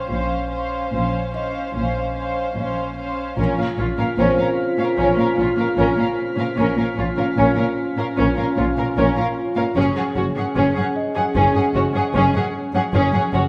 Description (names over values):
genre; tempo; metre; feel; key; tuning
cinematic, suspense film score; 75 BPM; 4/4; straight; unclear; A4 = 442 Hz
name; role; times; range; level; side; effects
muted studio violin section; melody; 0.0-13.4 s; G#4 to F#5; -31 LUFS; equal; none
muted studio violin section; second line; 0.0-13.4 s; Db4 to C5; -27 LUFS; equal; none
muted studio viola section; accompaniment; 0.0-13.4 s; Db4; -29 LUFS; equal; none
felt-muted upright piano; texture; 0.0-13.5 s; C4 to G5; -33 LUFS; equal; none
muted studio double bass section; bass; 0.1-13.4 s; F#1 to Bb1; -28 LUFS; equal; none
muted symphonic cello section; bass; 0.1-13.4 s; F#2 to Bb2; -27 LUFS; equal; none
warm French horn section; sustained chords; 3.4-13.5 s; Db3 to G#4; -26 LUFS; equal; none
muted studio violin section; texture; 3.4-9.3 s; F6 to B6; -36 LUFS; equal; none
room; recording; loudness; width
moderate scoring stage reverb, RT60 1.5 s; none; -20 LUFS; mono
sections
0.0-3.4 A section; 3.4-13.5 B section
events
none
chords
0.0 Bbmadd9; 3.4 Bbm; 9.8 F#sus2